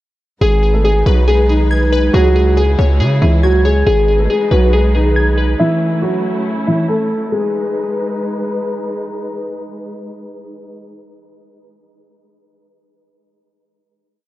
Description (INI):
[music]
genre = hip hop, drill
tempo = 139 BPM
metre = 4/4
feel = half-time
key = G# phrygian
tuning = A4 = 440 Hz
[part]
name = dark baby grand piano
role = melody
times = 0.4-8.6 s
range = D#3 to A4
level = -16 LUFS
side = equal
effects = tape echo
[part]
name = glassy digital keys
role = accompaniment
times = 0.4-5.6 s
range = G#4 to G#6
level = -20 LUFS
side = left 2 dB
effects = chorus
[part]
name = dark symphonic string section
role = sustained chords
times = 0.4-10.8 s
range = C#3 to B4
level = -23 LUFS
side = equal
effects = none
[part]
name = hard-hitting 808-style bass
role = bass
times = 0.4-5.6 s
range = G#1 to C#3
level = -13 LUFS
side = equal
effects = none
[sound]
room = light reverb, studio reverb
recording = dark, warm production, low-pass filter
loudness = -12 LUFS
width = side -15 dB against mid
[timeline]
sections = 0.4-7.3 breakdown; 7.3-10.8 final chord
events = filter sweep 0.4-7.3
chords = 0.4 G#m; 2.1 C#m; 3.9 G#m; 5.6 A; 7.3 G#m